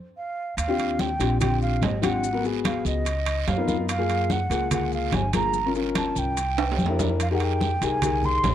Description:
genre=Afro-Cuban jazz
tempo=145 BPM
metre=4/4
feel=straight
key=Eb major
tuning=A4 = 439 Hz
part: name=breathy mellow concert flute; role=melody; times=0.2-8.5 s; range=Eb5 to C6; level=-28 LUFS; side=right 2 dB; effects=none
part: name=upright bass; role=bass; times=0.6-8.5 s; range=G1 to Gb2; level=-27 LUFS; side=right 1 dB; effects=none
part: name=congas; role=percussion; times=0.6-8.5 s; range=none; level=-30 LUFS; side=left 1 dB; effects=none
part: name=guiro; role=percussion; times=0.6-8.5 s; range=none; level=-38 LUFS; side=right 18 dB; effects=none
part: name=maracas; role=percussion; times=0.6-8.5 s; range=none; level=-38 LUFS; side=left 18 dB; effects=none
part: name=timbales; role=percussion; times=0.6-8.5 s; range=none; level=-32 LUFS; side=right 8 dB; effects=none
part: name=warm upright piano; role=accompaniment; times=0.7-8.5 s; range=Bb3 to Bb4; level=-27 LUFS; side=left 6 dB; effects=none
room=small room ambience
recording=dry, close 1970s-style studio recording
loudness=-22 LUFS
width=side -10 dB against mid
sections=0.6-8.5 A section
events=stop 0.0-0.6; drum fill 6.6-7.2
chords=0.0 N.C.; 0.6 Ebmaj13; 2.2 Abm7; 3.1 Db13; 3.9 Gbmaj9; 5.5 Gm7b5; 6.4 C7; 7.2 Fm11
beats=0.17 | 0.58 0.99 1.41 1.82 | 2.23 2.65 3.06 3.48 | 3.89 4.30 4.72 5.13 | 5.54 5.96 6.37 6.78 | 7.20 7.61 8.03 8.44

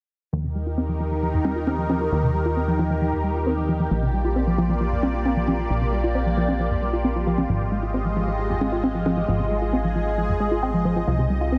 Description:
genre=uplifting trance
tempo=134 BPM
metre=4/4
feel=straight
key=unclear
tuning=A4 = 441 Hz
part: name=lush unison pad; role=sustained chords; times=0.6-11.6 s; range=C3 to Eb5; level=-28 LUFS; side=equal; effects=chorus, phaser
part: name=tight sequenced synth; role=arpeggios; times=0.3-11.6 s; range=F2 to F4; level=-28 LUFS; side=equal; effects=chorus, dub echo
part: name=plucky analog bass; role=bass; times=0.3-11.6 s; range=Ab1 to Eb2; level=-28 LUFS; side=equal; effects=none
part: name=congas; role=drums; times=1.4-2.0, 5.0-9.2 s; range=none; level=-28 LUFS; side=equal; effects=none
room=light reverb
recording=none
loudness=-23 LUFS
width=mono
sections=0.3-11.6 A section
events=filter sweep on synth arpeggio sound 0.3-11.6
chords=0.3 Eb; 3.9 Bb6; 7.5 Fm7/Ab; 11.1 Cm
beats=| 0.33 0.78 1.23 1.67 | 2.12 2.57 3.02 3.46 | 3.91 4.36 4.81 5.25 | 5.70 6.15 6.60 7.05 | 7.49 7.94 8.39 8.84 | 9.28 9.73 10.18 10.63 | 11.07 11.52

